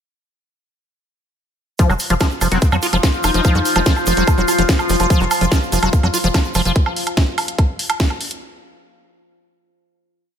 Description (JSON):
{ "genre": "psychedelic trance", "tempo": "145 BPM", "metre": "4/4", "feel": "straight", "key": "unclear", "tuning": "A4 = 440 Hz", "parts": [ { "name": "overtone-sweeping drone", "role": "sustained chords", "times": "2.4-6.8 s", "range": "F3 to F4", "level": "-22 LUFS", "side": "left 1 dB", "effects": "chorus, built-in reverb, sidechain pumping" }, { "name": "liquid acid bass", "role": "riff", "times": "1.8-6.7 s", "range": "F3 to F4", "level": "-20 LUFS", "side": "equal", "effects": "chorus, auto-pan, cassette tape, sidechain pumping, ping-pong delay" }, { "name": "electronic kick drum", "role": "drums", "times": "1.8-8.1 s", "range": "none", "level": "-15 LUFS", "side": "equal", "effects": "studio reverb" }, { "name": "garage drum kit", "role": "drums", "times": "1.8-8.4 s", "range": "hi-hat, snare drum, woodblock", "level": "-21 LUFS", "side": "right 2 dB", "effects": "studio reverb" }, { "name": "egg shaker", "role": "percussion", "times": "1.8-6.7 s", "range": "none", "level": "-29 LUFS", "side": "right 5 dB", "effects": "none" }, { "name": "tight sequencer bass", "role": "bass", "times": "1.9-6.7 s", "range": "F1 to F2", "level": "-20 LUFS", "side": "equal", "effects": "none" }, { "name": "metallic wobble bass", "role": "second line", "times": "2.5-3.8 s", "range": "C4 to Eb4", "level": "-28 LUFS", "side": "left 4 dB", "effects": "distortion, chorus, sidechain pumping, high-pass filter, ping-pong delay" } ], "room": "light reverb", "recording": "none", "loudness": "-14 LUFS", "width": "side -8 dB against mid", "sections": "1.8-8.4 drop", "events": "drop 1.8-8.4", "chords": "1.8 F5", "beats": "| 1.79 2.21 2.62 3.03 | 3.45 3.86 4.28 4.69 | 5.10 5.52 5.93 6.34 | 6.76 7.17 7.58 8.00" }